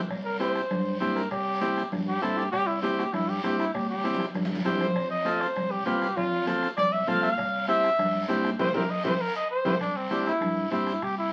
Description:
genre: latin, cumbia.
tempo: 198 BPM.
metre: 4/4.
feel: straight.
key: C major.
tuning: A4 = 440 Hz.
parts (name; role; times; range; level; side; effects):
fingered electric bass; bass; 0.0-11.3 s; C2 to G2; -36 LUFS; equal; none.
bombo; percussion; 0.1-11.2 s; none; -45 LUFS; equal; none.
congas; percussion; 0.1-11.2 s; none; -37 LUFS; equal; none.
cowbell and timbales; percussion; 0.1-9.7 s; none; -43 LUFS; equal; none.
guiro; percussion; 0.1-11.3 s; none; -45 LUFS; equal; none.
mellow trumpet; melody; 0.2-11.3 s; C4 to F5; -30 LUFS; equal; none.
overdriven combo organ; accompaniment; 0.4-10.9 s; C4 to B4; -30 LUFS; equal; none.
room: wet studio ambience, RT60 0.5 s.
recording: very old 78 rpm record, vinyl crackle.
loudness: -27 LUFS.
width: mono.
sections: 0.1-9.8 A section; 9.8-11.3 B section.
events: trumpet solo 0.1-9.8; drum fill 3.7-5.0, 8.6-9.8; band accent 8.6-9.8.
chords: 0.1 C; 5.0 F; 7.4 C.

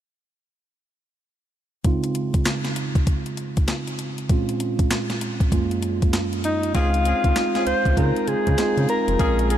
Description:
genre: R&B, new jack swing.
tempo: 98 BPM.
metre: 4/4.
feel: swing 63% on 16ths.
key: Db major.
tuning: A4 = 440 Hz.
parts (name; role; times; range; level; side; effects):
mellow tine electric piano; accompaniment; 1.8-9.6 s; Gb2 to F4; -25 LUFS; right 3 dB; analog chorus.
crisp 8-bit digital drum machine; drums; 1.8-9.6 s; handclaps, hi-hat, kick drum, snare drum; -23 LUFS; equal; overdrive.
breathy alto saxophone; melody; 6.4-9.6 s; Eb4 to C5; -22 LUFS; left 2 dB; analog delay.
mellow horn section; stabs; 6.7-9.6 s; Bb3 to Ab4; -30 LUFS; left 2 dB; analog delay.
round analog bass; bass; 6.7-9.6 s; F1 to Db3; -22 LUFS; equal; none.
room: moderate huge ambient reverb, RT60 4.3 s.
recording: dreamy mix soaked in reverb.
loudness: -19 LUFS.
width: side -11 dB against mid.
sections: 1.8-6.7 A section; 6.7-9.6 B section.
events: none.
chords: 1.8 Dbmaj7; 4.3 Bbm7; 5.5 Gbmaj9; 6.7 Dbmaj7.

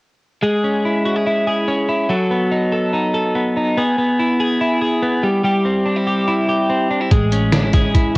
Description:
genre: jangly indie pop.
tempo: 144 BPM.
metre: 4/4.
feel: straight.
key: unclear.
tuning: A4 = 440 Hz.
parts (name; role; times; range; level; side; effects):
twelve-string electric guitar; arpeggios; 0.4-8.2 s; F#3 to A4; -15 LUFS; equal; none.
vintage muted picked electric bass; bass; 7.1-8.1 s; A1; -20 LUFS; equal; none.
lo-fi sampler-style drum kit; drums; 7.1-8.2 s; hi-hat, kick drum, snare drum; -14 LUFS; equal; cassette tape.
room: moderate spring reverb, RT60 1.4 s.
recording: home recording on cassette.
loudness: -15 LUFS.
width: side -25 dB against mid.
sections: 0.4-8.2 A section.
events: none.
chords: 0.4 C#m/G#; 2.1 B7; 3.8 E; 5.2 C; 7.1 Amaj7.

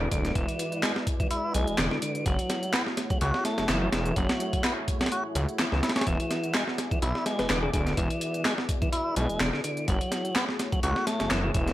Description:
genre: breakbeat, breaks.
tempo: 126 BPM.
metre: 4/4.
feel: swing 55% on 16ths.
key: E mixolydian.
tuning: A4 = 441 Hz.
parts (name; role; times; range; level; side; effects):
dark analog pad; sustained chords; 0.0-11.7 s; G#3 to D5; -35 LUFS; left 1 dB; chorus, vintage 12-bit sampler grit, sidechain pumping.
tonewheel organ; riff; 0.0-11.7 s; D3 to F#4; -30 LUFS; equal; overdrive, digital delay.
detuned saw bass; bass; 0.0-11.7 s; D1 to C#2; -29 LUFS; equal; none.
breakbeat sampler-style drum kit; drums; 0.1-11.7 s; hi-hat, kick drum, snare drum; -28 LUFS; equal; none.
garage drum kit; drums; 0.1-11.7 s; handclaps, hi-hat; -34 LUFS; equal; none.
bell-like FM electric piano; melody; 7.4-7.8 s; G#4 to B4; -32 LUFS; left 1 dB; chorus, small speaker sound, digital delay.
room: light reverb.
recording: vinyl crackle.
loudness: -25 LUFS.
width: side -14 dB against mid.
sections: 0.0-11.7 A section.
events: none.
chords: 0.0 E9; 2.3 F#m9; 6.1 E9; 9.9 F#m9.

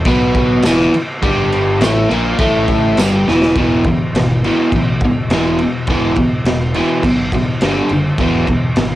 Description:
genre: garage rock duo or trio.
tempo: 103 BPM.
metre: 4/4.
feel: straight.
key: unclear.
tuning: A4 = 440 Hz.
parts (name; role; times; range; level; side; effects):
fuzz fingered electric bass; bass; 0.0-9.0 s; E1 to B1; -22 LUFS; equal; overdrive.
raw garage drum kit; drums; 0.0-8.9 s; crash cymbal, kick drum, snare drum; -18 LUFS; equal; none.
overdriven electric guitar; riff; 0.1-9.0 s; E2 to B3; -14 LUFS; equal; none.
tambourine; percussion; 0.7-3.1 s; none; -29 LUFS; right 6 dB; none.
room: light reverb.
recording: home recording on cassette.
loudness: -12 LUFS.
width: side -15 dB against mid.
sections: 0.0-3.5 A section; 3.5-9.0 B section.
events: drum fill 3.3.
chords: 0.0 E5; 7.6 G5; 8.2 E.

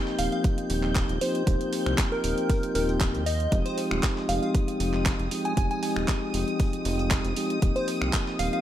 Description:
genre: deep house.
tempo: 117 BPM.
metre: 4/4.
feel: swing 54% on 16ths.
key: F minor.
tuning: A4 = 440 Hz.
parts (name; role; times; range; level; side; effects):
deep dark ambient pad; sustained chords; 0.0-8.6 s; Ab3 to G5; -37 LUFS; left 1 dB; chorus, built-in reverb, sidechain pumping.
mellow tonewheel organ; stabs; 0.0-8.6 s; F3 to G4; -29 LUFS; equal; slow rotary speaker, vintage 12-bit sampler grit, sidechain pumping, ping-pong delay.
string machine, violins; texture; 0.0-8.6 s; Eb6 to G6; -40 LUFS; equal; ensemble chorus, sidechain pumping.
breakbeat sampler-style drum kit; drums; 0.1-8.5 s; hi-hat, snare drum; -42 LUFS; right 2 dB; none.
plucky unison lead; melody; 0.2-8.6 s; Bb4 to Ab5; -32 LUFS; left 1 dB; tape echo.
round analog bass; bass; 0.2-8.5 s; Eb1 to Eb2; -30 LUFS; equal; sidechain pumping.
house drum kit; drums; 0.2-8.6 s; finger snaps, handclaps, hi-hat; -33 LUFS; right 1 dB; none.
electronic kick drum; drums; 0.4-8.2 s; none; -26 LUFS; equal; none.
room: digital ambience.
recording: none.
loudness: -24 LUFS.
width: side -12 dB against mid.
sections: 0.0-8.6 A section.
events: none.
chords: 0.0 Eb69; 3.5 Fm9; 7.6 Eb69.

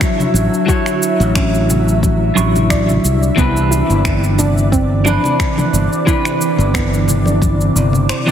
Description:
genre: sunset chillout.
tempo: 89 BPM.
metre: 4/4.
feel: swing 54% on 16ths.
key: unclear.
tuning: A4 = 439 Hz.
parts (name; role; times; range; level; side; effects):
clean electric guitar; accompaniment; 0.0-8.3 s; E3 to C#6; -18 LUFS; moving between left 2 dB and right 5 dB; auto-pan, digital delay.
shimmering ambient pad; sustained chords; 0.0-8.3 s; C3 to E5; -19 LUFS; equal; chorus, built-in reverb.
electronic finger snaps and shaker; drums; 0.0-8.3 s; none; -22 LUFS; equal; none.
electronic kick drum; drums; 0.0-7.6 s; none; -18 LUFS; equal; none.
congas; percussion; 0.2-8.3 s; none; -22 LUFS; left 2 dB; none.
modern bright fingered electric bass; bass; 0.3-8.1 s; G1 to C2; -15 LUFS; equal; none.
soft round pluck; arpeggios; 0.7-8.3 s; B3 to D5; -24 LUFS; right 2 dB; lush chorus, digital delay.
room: moderate lush hall reverb, RT60 2.1 s.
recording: heavily compressed radio sound.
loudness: -12 LUFS.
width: side -9 dB against mid.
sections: 0.0-8.3 A section.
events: break 8.1.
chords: 0.0 Dmaj9; 3.0 Cmaj9.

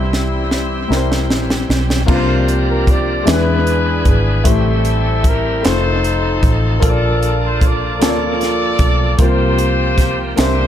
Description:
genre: slow gospel.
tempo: 51 BPM (dotted quarters).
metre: 6/8.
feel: straight.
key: unclear.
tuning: A4 = 438 Hz.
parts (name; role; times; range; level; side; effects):
warm horn section; melody; 0.0-10.7 s; G3 to D5; -19 LUFS; left 1 dB; analog delay.
warm baby grand piano; accompaniment; 0.0-10.7 s; A2 to D5; -20 LUFS; left 3 dB; analog delay.
bright tonewheel organ; sustained chords; 0.0-10.7 s; D3 to Bb4; -25 LUFS; right 3 dB; slow rotary speaker, overdrive.
muted studio string section; sustained chords; 0.0-2.1 s; E5 to E6; -31 LUFS; left 4 dB; none.
vintage muted fingered electric bass; bass; 0.0-10.7 s; F1 to E2; -18 LUFS; equal; none.
crisp fusion drum kit; drums; 0.1-10.6 s; crash cymbal, hi-hat, kick drum, snare drum; -17 LUFS; equal; analog delay.
room: little or no reverb.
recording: echo-heavy mix.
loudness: -13 LUFS.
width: side -10 dB against mid.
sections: 0.0-2.1 A section; 2.1-10.7 B section.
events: drum fill 0.0-2.1.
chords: 0.0 C; 2.1 C9sus4; 3.3 E7; 4.5 Am7; 5.6 F7; 6.8 Bbmaj7; 9.2 C7sus4.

